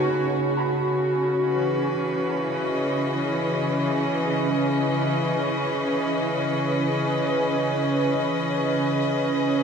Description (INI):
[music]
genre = ambient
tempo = free time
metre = none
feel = none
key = C# minor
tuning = A4 = 443 Hz
[part]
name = bright chamber string section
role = sustained chords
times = 0.0-9.6 s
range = C#3 to D#5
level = -21 LUFS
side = equal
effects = none
[part]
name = felt-muted upright piano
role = arpeggios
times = 0.0-3.6 s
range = D#4 to B5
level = -35 LUFS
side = equal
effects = none
[sound]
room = wet huge ambient reverb, RT60 8.8 s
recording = dark, warm production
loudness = -21 LUFS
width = side -6 dB against mid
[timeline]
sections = 0.3-9.6 A section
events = none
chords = 0.3 C#m7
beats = free time